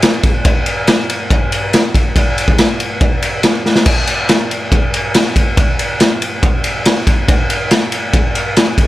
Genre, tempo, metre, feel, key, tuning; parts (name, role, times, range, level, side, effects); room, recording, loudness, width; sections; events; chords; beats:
rock; 140 BPM; 4/4; straight
raw garage drum kit; drums; 0.0-8.9 s; crash cymbal, kick drum, ride cymbal, snare drum; -11 LUFS; equal
little or no reverb; -11 LUFS; side -16 dB against mid
0.0-8.9 A section
drum fill 3.6
0.02 | 0.45 0.87 1.30 1.73 | 2.15 2.58 3.01 3.44 | 3.86 4.29 4.72 5.14 | 5.57 6.00 6.42 6.85 | 7.28 7.71 8.13 8.56